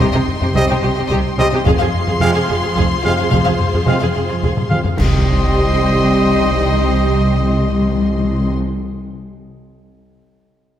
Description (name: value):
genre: cinematic, epic orchestral film score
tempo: 72 BPM (dotted quarters)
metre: 6/8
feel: straight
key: C minor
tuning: A4 = 441 Hz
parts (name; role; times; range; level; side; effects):
- warm symphonic violin section; melody; 0.0-8.5 s; C6; -26 LUFS; left 4 dB; none
- rich symphonic violin section; second line; 0.0-8.5 s; Eb5 to F5; -26 LUFS; left 4 dB; none
- rich symphonic viola section; accompaniment; 0.0-8.5 s; G4 to Ab4; -24 LUFS; equal; none
- warm symphonic string section; sustained chords; 0.0-8.5 s; Eb4 to G5; -27 LUFS; left 1 dB; none
- warm studio cello section; bass; 0.0-8.5 s; C2 to C3; -22 LUFS; right 2 dB; none
- warm symphonic double bass section; bass; 0.0-8.5 s; F1 to C2; -20 LUFS; right 2 dB; none
- taiko ensemble; drums; 0.0-6.0 s; none; -20 LUFS; left 1 dB; none
- warm trombone section; sustained chords; 0.5-8.5 s; C3 to Ab3; -27 LUFS; right 3 dB; none
- mellow French horn section; sustained chords; 0.6-8.5 s; C4 to G4; -26 LUFS; left 3 dB; none
- clear trumpet; stabs; 0.6-8.5 s; Eb5 to F5; -24 LUFS; right 1 dB; none
- clash cymbals and concert bass drum; percussion; 5.0-6.0 s; none; -22 LUFS; equal; none
- timpani; percussion; 5.0-8.6 s; C3; -21 LUFS; left 2 dB; none
room: wet concert hall reverb, RT60 1.9 s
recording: none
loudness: -13 LUFS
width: side -10 dB against mid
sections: 0.0-5.0 A section; 5.0-8.3 B section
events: drum fill 4.6-5.0; band accent 5.0-5.5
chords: 0.0 Cm; 1.7 Fm; 5.0 Cm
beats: | 0.01 0.84 | 1.67 2.50 | 3.33 4.16 | 4.99 5.81 | 6.64 7.47